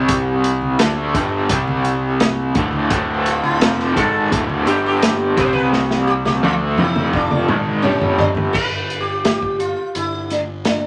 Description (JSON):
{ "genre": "psychedelic rock", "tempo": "85 BPM", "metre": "4/4", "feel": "straight", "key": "D minor", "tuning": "A4 = 440 Hz", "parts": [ { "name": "raw garage guitar", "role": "riff", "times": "0.0-8.5 s", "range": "D2 to D4", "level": "-20 LUFS", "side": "equal", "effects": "overdrive, tremolo" }, { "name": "fuzz picked electric bass", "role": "bass", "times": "0.0-10.9 s", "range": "D1 to D2", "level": "-29 LUFS", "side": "equal", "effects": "overdrive" }, { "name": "vintage drum kit", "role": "drums", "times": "0.1-10.8 s", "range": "crash cymbal, hi-hat, kick drum, snare drum, toms", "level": "-23 LUFS", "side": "equal", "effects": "none" }, { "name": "congas", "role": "percussion", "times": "0.6-8.5 s", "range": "none", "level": "-32 LUFS", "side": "equal", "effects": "none" }, { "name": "sitar", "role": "melody", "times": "3.3-10.9 s", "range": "C#4 to C5", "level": "-24 LUFS", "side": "equal", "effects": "none" } ], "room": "moderate club reverb, RT60 0.6 s", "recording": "none", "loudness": "-18 LUFS", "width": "mono", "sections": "0.0-8.5 A section; 8.5-10.9 B section", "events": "drum fill 5.7-8.5", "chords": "0.0 C5; 0.8 D5; 1.5 C5; 2.6 Dm; 4.7 G5; 5.4 C5; 6.4 Dm; 6.8 F5; 7.5 G#5; 7.8 G5; 8.5 G" }